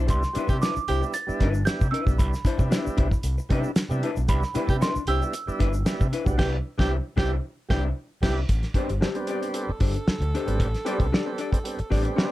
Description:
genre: funk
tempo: 114 BPM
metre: 4/4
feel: straight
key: A minor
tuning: A4 = 440 Hz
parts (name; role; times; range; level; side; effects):
- vintage hollow-body jazz guitar; accompaniment; 0.0-12.3 s; D4 to D5; -31 LUFS; left 6 dB; none
- tonewheel organ; stabs; 0.0-12.3 s; G3 to F#4; -32 LUFS; right 3 dB; slow rotary speaker
- overdriven fingered electric bass; bass; 0.0-12.0 s; G1 to C3; -26 LUFS; equal; none
- celesta; melody; 0.1-7.9 s; B5 to A6; -31 LUFS; right 4 dB; none
- cloth-damped thuddy drum kit; drums; 0.1-12.3 s; crash cymbal, hi-hat, kick drum, snare drum; -24 LUFS; equal; none
- tube shaker; percussion; 0.1-6.4 s; none; -47 LUFS; left 2 dB; none
- breathy tenor saxophone; second line; 0.5-1.0, 4.7-12.3 s; G4 to A4; -32 LUFS; right 3 dB; none
room: light reverb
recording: dark, warm production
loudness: -22 LUFS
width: side -16 dB against mid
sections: 0.0-8.5 A section; 8.5-12.3 B section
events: band accent 6.4-8.5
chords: 0.0 Cmaj9; 8.5 Am11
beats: | 0.09 0.62 1.14 1.67 | 2.19 2.71 3.24 3.76 | 4.29 4.81 5.34 5.86 | 6.39 6.91 7.44 7.96 | 8.49 9.02 9.54 10.07 | 10.60 11.12 11.65 12.18

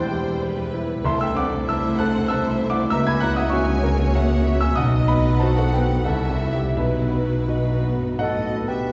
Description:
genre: classical, romantic movement for piano and orchestra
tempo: 78-100 BPM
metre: 3/4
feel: rubato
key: unclear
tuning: A4 = 440 Hz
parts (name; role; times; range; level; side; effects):
- clear grand piano; melody; 0.0-8.9 s; B1 to A6; -25 LUFS; equal; none
- rich symphonic violin section; melody; 0.0-8.9 s; D#4 to G#5; -38 LUFS; equal; none
- clear symphonic violin section; second line; 0.0-8.5 s; A4 to G#5; -34 LUFS; equal; none
- warm symphonic viola section; accompaniment; 0.0-8.7 s; G3 to F#4; -30 LUFS; equal; none
- dark symphonic double bass section; bass; 0.0-8.7 s; E1 to C#2; -28 LUFS; equal; none
- rich symphonic cello section; bass; 0.0-8.9 s; E2 to C#3; -30 LUFS; equal; none
- bright silver concert flute; second line; 8.2-8.9 s; A4 to B4; -32 LUFS; equal; none
room: wet concert hall reverb, RT60 1.8 s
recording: heard from further back in the room, nothing above 7.7 kHz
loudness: -21 LUFS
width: mono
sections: 0.0-8.9 A section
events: none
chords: 0.0 C/E; 1.0 Am/C; 2.9 F#7/C#; 4.8 B; 6.1 C; 6.8 B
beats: 0.42 | 1.05 1.68 2.30 | 2.91 3.52 4.14 | 4.77 5.40 6.05 | 6.75 7.47 8.19

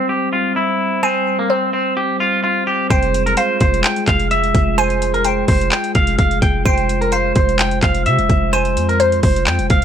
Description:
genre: hip hop, trap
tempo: 128 BPM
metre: 4/4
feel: half-time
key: F harmonic minor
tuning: A4 = 440 Hz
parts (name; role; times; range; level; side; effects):
- twangy electric guitar; melody; 0.0-9.8 s; Bb3 to G5; -18 LUFS; right 1 dB; low-pass filter, ping-pong delay
- glassy wavetable pluck; second line; 0.0-9.4 s; C5 to Ab5; -21 LUFS; left 2 dB; chorus, ping-pong delay
- glass harmonica; sustained chords; 0.0-9.8 s; G3 to C5; -22 LUFS; left 1 dB; low-pass filter
- hard-hitting 808-style bass; bass; 2.9-9.8 s; F1 to C3; -20 LUFS; equal; none
- trap drum kit; drums; 2.9-9.8 s; handclaps, hi-hat, kick drum; -18 LUFS; equal; vintage 12-bit sampler grit
room: little or no reverb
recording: none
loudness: -14 LUFS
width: side -9 dB against mid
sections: 0.0-2.9 A section; 2.9-9.8 B section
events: filter sweep 0.0-2.9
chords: 0.0 Fsus2; 2.9 Fmadd9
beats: 0.09 0.56 | 1.03 1.50 1.97 2.44 | 2.90 3.37 3.84 4.31 | 4.78 5.25 5.72 6.19 | 6.66 7.12 7.59 8.06 | 8.53 9.00 9.47

